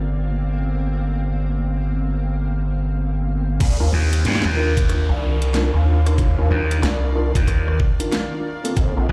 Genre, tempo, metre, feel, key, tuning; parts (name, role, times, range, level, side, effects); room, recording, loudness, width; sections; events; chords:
glitch hop; 93 BPM; 4/4; swing 62% on 16ths; C dorian; A4 = 441 Hz
mellow tine electric piano; stabs; 0.0-9.0 s; Bb3 to Bb4; -31 LUFS; equal; sidechain pumping, delay
gritty driven synth bass; bass; 0.0-9.1 s; G1 to Eb2; -22 LUFS; equal; overdrive
granular cloud pad; texture; 0.0-9.1 s; Eb3 to F5; -34 LUFS; equal; built-in reverb, sidechain pumping
dubstep drum kit; drums; 3.6-8.9 s; crash cymbal, hi-hat, rim click, snare drum; -29 LUFS; equal
electronic kick drum; drums; 3.6-8.9 s; -21 LUFS; equal
downlifter; sound effects; 3.6-8.8 s; -38 LUFS; equal
gritty slap bass; bass; 3.9-9.1 s; Bb1 to G2; -21 LUFS; equal; overdrive, tube saturation
little or no reverb; played on a big sound system in a bare room, large studio reverb, lossy compression artefacts; -20 LUFS; mono
0.0-3.6 A section; 3.6-9.1 B section
drop 3.6-9.1
0.0 Gm11; 3.6 Cm11